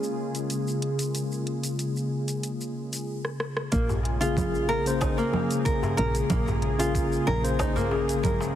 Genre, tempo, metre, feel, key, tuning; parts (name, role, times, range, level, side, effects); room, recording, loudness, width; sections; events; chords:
organic downtempo; 93 BPM; 4/4; straight; Bb minor; A4 = 437 Hz
tine electric piano; accompaniment; 0.0-8.6 s; Db3 to C5; -29 LUFS; left 3 dB; medium stereo tremolo, sidechain pumping, tape echo
warm analog pad; sustained chords; 0.0-8.6 s; Db3 to Ab4; -34 LUFS; right 1 dB; lush chorus, sidechain pumping
organic electronic drum kit; drums; 0.0-8.5 s; congas, hi-hat, rim click, shaker, snare drum; -33 LUFS; right 2 dB; overdrive
nylon-string guitar; arpeggios; 3.7-8.5 s; Bb3 to Bb4; -29 LUFS; right 1 dB; tape echo
woody FM bass; bass; 3.7-8.5 s; Bb1; -30 LUFS; equal
electronic kick drum; drums; 3.7-8.4 s; -29 LUFS; equal; overdrive
darbuka; percussion; 3.9-8.5 s; -33 LUFS; left 1 dB
light reverb; heavily compressed radio sound; -24 LUFS; side -11 dB against mid
0.0-3.7 A section; 3.7-8.6 B section
drum fill 3.2-3.7
0.0 Bbm7